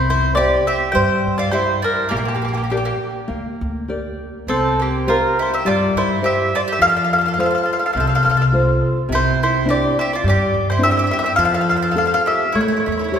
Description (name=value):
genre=italian folk, Italian serenade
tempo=104 BPM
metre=4/4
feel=swing 53% on 8ths, rubato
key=unclear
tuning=A4 = 436 Hz
part: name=mandolin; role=melody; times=0.0-13.2 s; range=G4 to G5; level=-18 LUFS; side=left 1 dB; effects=none
part: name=bowl-back mandolin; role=second line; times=0.0-13.2 s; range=Bb3 to C5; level=-24 LUFS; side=right 4 dB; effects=none
part: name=nylon-string guitar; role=accompaniment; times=0.0-13.2 s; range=C3 to F5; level=-22 LUFS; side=left 1 dB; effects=none
part: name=upright bass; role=bass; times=0.0-13.2 s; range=A1 to G2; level=-23 LUFS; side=equal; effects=none
room=wet concert hall reverb, RT60 2.2 s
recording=recorded in a church or concert hall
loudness=-15 LUFS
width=side -8 dB against mid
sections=0.0-13.2 A section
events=none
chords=0.0 C; 2.1 Gm/Bb; 4.5 Csus4; 6.8 F; 9.1 Cadd9; 11.4 F; 12.5 A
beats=0.37 0.95 1.53 | 2.12 2.70 3.29 3.89 | 4.49 5.08 5.66 6.24 | 6.81 7.38 7.95 8.52 | 9.09 9.66 10.23 10.80 | 11.38 11.96 12.54 13.14